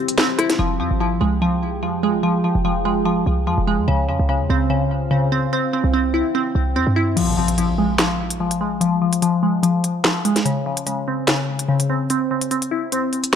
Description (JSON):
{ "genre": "hip hop, drill", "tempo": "146 BPM", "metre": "4/4", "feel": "half-time", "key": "F harmonic minor", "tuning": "A4 = 439 Hz", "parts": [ { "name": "deep dark ambient pad", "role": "sustained chords", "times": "0.0-7.2 s", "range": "Db3 to G5", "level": "-28 LUFS", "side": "equal", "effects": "chorus, built-in reverb" }, { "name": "glassy wavetable pluck", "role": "arpeggios", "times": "0.0-13.4 s", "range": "Db3 to E4", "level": "-19 LUFS", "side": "left 1 dB", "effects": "chorus, low-pass filter, ping-pong delay" }, { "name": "drill drum kit", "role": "drums", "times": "0.1-0.6, 7.2-13.4 s", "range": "crash cymbal, handclaps, hi-hat, rim click, snare drum", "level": "-21 LUFS", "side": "equal", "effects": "none" }, { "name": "short 808-style bass", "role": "bass", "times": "0.6-7.2 s", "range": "F1 to G2", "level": "-22 LUFS", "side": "right 1 dB", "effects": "none" }, { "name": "impact", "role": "sound effects", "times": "7.2-8.8 s", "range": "none", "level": "-26 LUFS", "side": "right 1 dB", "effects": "none" } ], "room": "light reverb", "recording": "none", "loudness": "-17 LUFS", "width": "side -8 dB against mid", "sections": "0.6-7.2 A section; 7.2-13.4 B section", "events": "break 0.0-0.6; kick muted 7.2-13.4; impact 7.2-8.8", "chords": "0.0 C; 0.6 Fmadd9; 3.9 Dbmaj7; 5.5 C; 7.2 Fm; 10.5 N.C.; 12.1 C" }